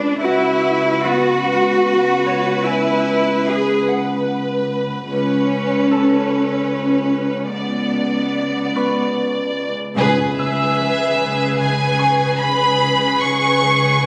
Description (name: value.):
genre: cinematic, suspense film score.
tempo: 74 BPM.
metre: 3/4.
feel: straight.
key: C# phrygian.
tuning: A4 = 439 Hz.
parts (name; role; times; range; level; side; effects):
rich symphonic violin section; melody; 0.0-14.1 s; B4 to C#6; -23 LUFS; equal; none.
rich symphonic cello section; bass; 0.0-14.1 s; C#2 to G#4; -22 LUFS; equal; none.
rich symphonic double bass section; bass; 0.0-10.7 s; C#2; -26 LUFS; equal; none.
concert harp; texture; 0.0-14.1 s; B3 to E6; -28 LUFS; equal; none.
rich symphonic violin section; second line; 10.0-14.1 s; G#4 to B4; -22 LUFS; equal; none.
concert harp; riff; 10.0-14.1 s; C#3 to C#4; -26 LUFS; equal; none.
taiko ensemble; drums; 10.0-11.6 s; none; -41 LUFS; equal; none.
sub drop; sound effects; 10.0-12.4 s; none; -34 LUFS; equal; none.
room: moderate scoring stage reverb, RT60 1.6 s.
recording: recorded on a phone in the room, studio reverb, compression.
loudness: -18 LUFS.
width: mono.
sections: 0.0-10.0 A section; 10.0-14.1 A section.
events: band accent 10.0-10.8; impact 10.0-12.4.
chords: 0.2 C#m7; 5.1 Aadd9/C#; 7.5 Bm/C#; 10.0 C#m7.